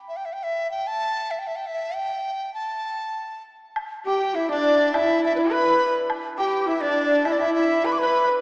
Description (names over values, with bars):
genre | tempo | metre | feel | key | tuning
chinese traditional, Chinese chamber ensemble | 95-105 BPM | 2/4 | rubato | unclear | A4 = 439 Hz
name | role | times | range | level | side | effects
mellow large dizi | melody | 0.1-8.3 s | B4 to D6 | -24 LUFS | equal | none
woodblock | percussion | 3.8-8.0 s | none | -33 LUFS | equal | none
breathy bright xiao | second line | 4.0-8.3 s | D4 to B4 | -26 LUFS | equal | none
bright horsehead fiddle | second line | 4.1-8.3 s | D4 to B4 | -26 LUFS | equal | none
hammered dulcimer | second line | 4.1-8.4 s | D4 to B4 | -24 LUFS | equal | none
room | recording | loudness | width
wet church reverb, RT60 2.8 s | recorded in a church or concert hall, small speaker sound | -20 LUFS | side -24 dB against mid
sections
0.0-3.8 A section; 3.8-8.4 B section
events
none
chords
none